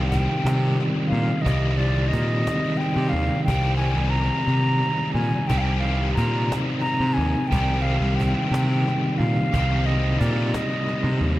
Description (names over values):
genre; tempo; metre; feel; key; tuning
psychedelic rock; 59 BPM (dotted quarters); 6/8; straight; C minor; A4 = 440 Hz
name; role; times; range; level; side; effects
concert flute; melody; 0.0-11.3 s; D5 to Bb5; -28 LUFS; equal; tape echo
overdriven electric guitar; riff; 0.0-11.4 s; C3 to G4; -24 LUFS; equal; rotary speaker, tape echo
fuzz picked electric bass; bass; 0.0-11.4 s; C2 to C3; -23 LUFS; equal; overdrive
cajon; drums; 0.1-11.3 s; none; -32 LUFS; equal; tape echo
room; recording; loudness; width
small room ambience; echo-heavy mix; -20 LUFS; side -16 dB against mid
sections
0.0-11.4 A section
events
kick and snare drop out 4.5-5.5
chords
0.0 Cm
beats
0.45 | 1.46 2.47 | 3.48 4.49 | 5.50 6.51 | 7.52 8.53 | 9.54 10.55